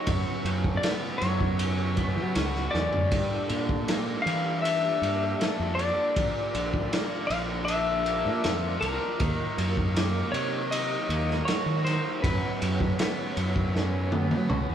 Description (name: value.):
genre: psychedelic rock.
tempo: 79 BPM.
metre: 4/4.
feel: straight.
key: unclear.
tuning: A4 = 440 Hz.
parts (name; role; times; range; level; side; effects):
clean lap steel guitar; melody; 0.0-14.7 s; A#4 to E#5; -30 LUFS; left 3 dB; none.
tonewheel organ; sustained chords; 0.0-14.7 s; C#3 to D#5; -37 LUFS; right 6 dB; slow rotary speaker, overdrive, chorus vibrato.
raw garage guitar; riff; 0.0-14.7 s; F#2 to A4; -34 LUFS; equal; overdrive.
fuzz fingered electric bass; bass; 0.1-14.7 s; A#1 to F#3; -30 LUFS; equal; overdrive.
vintage drum kit; drums; 0.1-14.7 s; kick drum, ride cymbal, snare drum, toms; -30 LUFS; equal; none.
room: moderate large studio reverb, RT60 1.0 s.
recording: band playing live in one room.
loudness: -24 LUFS.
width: side -9 dB against mid.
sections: 0.0-14.7 A section.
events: drum fill 2.7-3.1, 13.8-14.7.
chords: 0.1 F#sus4; 3.1 Gmadd9; 6.2 A#; 9.2 D#m; 12.2 F#sus4.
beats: | 0.07 0.83 1.60 2.36 | 3.12 3.88 4.64 5.40 | 6.17 6.93 7.69 8.45 | 9.21 9.96 10.72 11.48 | 12.24 12.99 13.75 14.51.